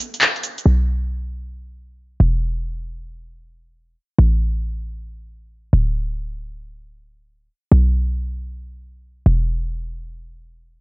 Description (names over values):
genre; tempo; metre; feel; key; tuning
UK garage, two-step garage; free time; none; none; unclear; A4 = 443 Hz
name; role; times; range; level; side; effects
punchy analog drum machine; drums; 0.1-0.6 s; handclaps, hi-hat, shaker; -18 LUFS; equal; none
short 808-style bass; bass; 0.7-10.8 s; D1 to B1; -17 LUFS; equal; none
room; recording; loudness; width
little or no reverb; nothing above 7.5 kHz; -17 LUFS; side -25 dB against mid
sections
0.7-10.8 A section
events
break 0.0-0.7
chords
none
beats
free time